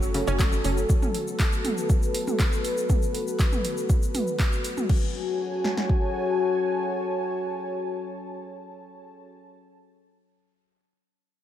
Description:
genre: melodic techno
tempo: 120 BPM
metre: 4/4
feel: straight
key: F# minor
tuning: A4 = 440 Hz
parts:
  - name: dark analog pad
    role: sustained chords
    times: 0.0-9.3 s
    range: F#4 to A5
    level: -28 LUFS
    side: left 2 dB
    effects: chorus, sidechain pumping
  - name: tight sequencer bass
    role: bass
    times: 0.0-0.8 s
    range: F#1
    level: -28 LUFS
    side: equal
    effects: sidechain pumping
  - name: techno drum kit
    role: drums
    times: 0.0-5.0 s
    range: crash cymbal, handclaps, hi-hat, shaker, toms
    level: -31 LUFS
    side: right 1 dB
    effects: small room ambience
  - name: analog pluck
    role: arpeggios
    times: 0.1-0.7 s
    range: C#3 to C#4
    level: -31 LUFS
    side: right 1 dB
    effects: chorus, sidechain pumping, tape echo
  - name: deep house drum kit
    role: drums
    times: 0.4-6.0 s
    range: kick drum, snare drum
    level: -23 LUFS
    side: equal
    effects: overdrive, small room ambience
room: moderate lush hall reverb, RT60 2.1 s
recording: dreamy mix soaked in reverb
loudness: -23 LUFS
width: side -11 dB against mid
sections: 0.0-4.9 A section; 4.9-8.9 B section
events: none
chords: 0.0 F#m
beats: 0.40 | 0.90 1.40 1.90 2.40 | 2.90 3.40 3.90 4.39 | 4.89 5.39 5.89 6.39 | 6.89 7.39 7.89 8.39

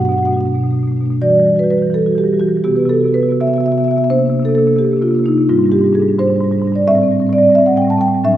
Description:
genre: classical, contemporary piece for solo marimba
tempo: 85 BPM (dotted quarters)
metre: 6/8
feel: uneven beats, rubato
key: E minor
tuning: A4 = 440 Hz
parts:
  - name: marimba with soft mallets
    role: solo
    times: 0.0-8.4 s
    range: G#2 to A5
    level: -12 LUFS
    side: equal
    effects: none
room: wet recital hall reverb, RT60 1.3 s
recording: heard from further back in the room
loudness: -12 LUFS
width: side -12 dB against mid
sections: 0.0-1.2 A section; 1.2-8.4 B section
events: none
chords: 0.0 Bm7; 1.2 Emadd9; 2.6 Cmaj7#11; 4.1 Csus2; 5.5 G#maj7#11; 6.9 Am7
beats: 0.46 | 1.21 1.94 | 2.65 3.39 | 4.10 4.79 | 5.48 6.18 | 6.87 7.55 | 8.25

